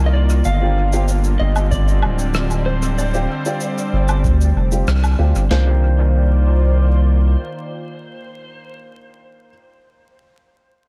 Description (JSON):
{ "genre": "ambient dub", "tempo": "95 BPM", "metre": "4/4", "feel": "straight", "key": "C minor", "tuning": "A4 = 441 Hz", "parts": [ { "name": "warm analog pad", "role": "sustained chords", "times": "0.0-8.8 s", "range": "D3 to D5", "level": "-28 LUFS", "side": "equal", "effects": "lush chorus" }, { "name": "soft dub sub bass", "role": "bass", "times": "0.0-7.4 s", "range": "D1 to D2", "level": "-17 LUFS", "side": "equal", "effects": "tube saturation" }, { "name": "electric slide guitar", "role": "melody", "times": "0.1-8.8 s", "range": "C5 to F5", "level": "-30 LUFS", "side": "equal", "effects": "dub echo" }, { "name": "shaker, woodblock and rim click", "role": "drums", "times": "0.3-5.5 s", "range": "none", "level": "-31 LUFS", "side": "equal", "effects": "dub echo" }, { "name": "dark upright piano", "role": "stabs", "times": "0.6-9.5 s", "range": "Bb3 to G4", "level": "-32 LUFS", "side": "equal", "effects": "dub echo" }, { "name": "booming analog drum machine", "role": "drums", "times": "1.7-5.7 s", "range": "kick drum, snare drum", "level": "-24 LUFS", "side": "equal", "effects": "none" } ], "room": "small room reverb", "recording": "vinyl crackle", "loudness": "-17 LUFS", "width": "mono", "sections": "0.0-5.5 A section; 5.5-8.0 B section", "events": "band accent 4.9-5.2", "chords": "0.5 G7sus4; 5.5 Cm11" }